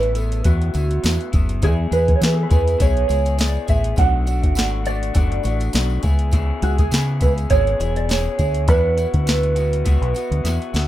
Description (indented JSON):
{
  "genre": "indie pop, bedroom pop",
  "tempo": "102 BPM",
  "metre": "4/4",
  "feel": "swing 55% on 16ths",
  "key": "E mixolydian",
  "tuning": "A4 = 440 Hz",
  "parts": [
    { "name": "mellow electric guitar", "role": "melody", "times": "0.0-10.7 s", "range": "F#4 to F#5", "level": "-23 LUFS", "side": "right 3 dB", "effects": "analog chorus, tape echo" },
    { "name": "electric guitar through a small old amp", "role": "accompaniment", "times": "0.0-10.9 s", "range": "A2 to G#4", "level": "-28 LUFS", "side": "left 5 dB", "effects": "lush chorus, warbly pitch drift" },
    { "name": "deep dub fingered electric bass", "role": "bass", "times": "0.0-10.9 s", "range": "E1 to E3", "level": "-20 LUFS", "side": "equal", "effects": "none" },
    { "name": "soft vintage rhythm box", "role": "drums", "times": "0.0-10.9 s", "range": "hi-hat, kick drum, snare drum", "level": "-19 LUFS", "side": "equal", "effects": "none" },
    { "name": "tambourine", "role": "percussion", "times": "0.2-10.9 s", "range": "none", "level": "-40 LUFS", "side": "right 4 dB", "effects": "none" }
  ],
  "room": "light reverb",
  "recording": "rough home demo mix",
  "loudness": "-16 LUFS",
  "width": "side -13 dB against mid",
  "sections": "0.0-10.9 A section",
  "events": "drum fill 10.4-10.9",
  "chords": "0.0 Asus2; 1.6 E; 4.0 Bm7; 6.0 C#m7; 8.7 Esus2"
}